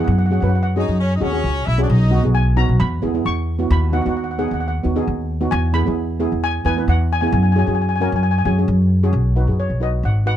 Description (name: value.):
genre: calypso.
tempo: 133 BPM.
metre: 4/4.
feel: straight.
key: B major.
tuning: A4 = 440 Hz.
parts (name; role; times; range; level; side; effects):
steel pan; melody; 0.0-10.4 s; C#5 to C#6; -24 LUFS; left 3 dB; none.
steel pan; accompaniment; 0.0-10.3 s; B3 to B4; -23 LUFS; right 2 dB; none.
upright bass; bass; 0.0-10.3 s; G#1 to F#2; -17 LUFS; equal; none.
bright horn section; second line; 0.8-2.2 s; C#4 to E5; -24 LUFS; left 1 dB; none.
room: light reverb.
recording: dark, warm production.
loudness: -16 LUFS.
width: side -11 dB against mid.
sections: 0.0-9.1 A section; 9.1-10.4 B section.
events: none.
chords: 0.1 F#sus2; 1.9 B; 2.8 E6; 3.7 B/D#; 5.5 E; 7.3 F#sus2; 9.1 B.